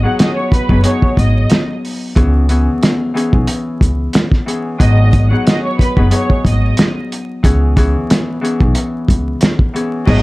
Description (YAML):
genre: hip hop, boom-bap hip-hop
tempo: 91 BPM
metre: 4/4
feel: swing 56% on 16ths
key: unclear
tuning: A4 = 441 Hz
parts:
  - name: clear studio violin section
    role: melody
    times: 0.0-10.2 s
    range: B4 to F#6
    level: -21 LUFS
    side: right 1 dB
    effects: high-pass filter, low-pass filter, digital delay
  - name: Celtic harp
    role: accompaniment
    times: 0.0-10.2 s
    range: E3 to G#4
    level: -18 LUFS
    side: left 2 dB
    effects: cassette tape, high-pass filter, low-pass filter
  - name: upright bass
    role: bass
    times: 0.0-10.2 s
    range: F#1 to C#2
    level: -13 LUFS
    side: equal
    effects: none
  - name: cloth-damped thuddy drum kit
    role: drums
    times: 0.2-10.2 s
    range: crash cymbal, hi-hat, kick drum, snare drum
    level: -13 LUFS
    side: equal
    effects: none
room: light reverb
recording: dark, warm production, vinyl crackle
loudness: -11 LUFS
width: side -20 dB against mid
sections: 0.0-10.1 A section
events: none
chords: 0.0 G#m7; 2.2 C#m7; 4.8 G#m7; 7.4 C#m7